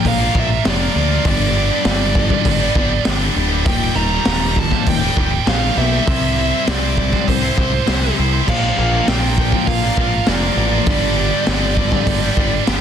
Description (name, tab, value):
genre	quiet-loud alternative rock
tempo	100 BPM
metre	4/4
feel	straight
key	unclear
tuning	A4 = 440 Hz
part	bluesy overdriven lead guitar	melody	0.0-12.6 s	C5 to Bb5	-22 LUFS	right 3 dB	distortion, slapback echo
part	cranked stack guitar	riff	0.0-12.8 s	Eb2 to C5	-22 LUFS	left 13 dB	overdrive
part	high-gain distorted guitar	riff	0.0-12.8 s	Eb2 to C5	-22 LUFS	right 14 dB	distortion
part	growling picked electric bass	bass	0.1-12.8 s	D1 to D2	-20 LUFS	equal	overdrive
part	raw garage drum kit	drums	0.1-12.8 s	crash cymbal, hi-hat, kick drum, snare drum	-20 LUFS	equal	none
part	tight distorted guitar	riff	8.5-12.8 s	G2 to Bb3	-25 LUFS	equal	distortion
room	light reverb, small room ambience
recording	dense, heavily limited modern master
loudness	-14 LUFS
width	side -8 dB against mid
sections	0.0-12.8 A section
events	none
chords	0.0 Bb; 1.3 G; 3.7 Eb; 6.1 C; 8.5 Bb; 10.9 G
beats	0.06 0.66 | 1.26 1.86 2.47 3.07 | 3.67 4.27 4.87 5.47 | 6.08 6.68 7.28 7.88 | 8.48 9.08 9.68 10.28 | 10.88 11.47 12.07 12.67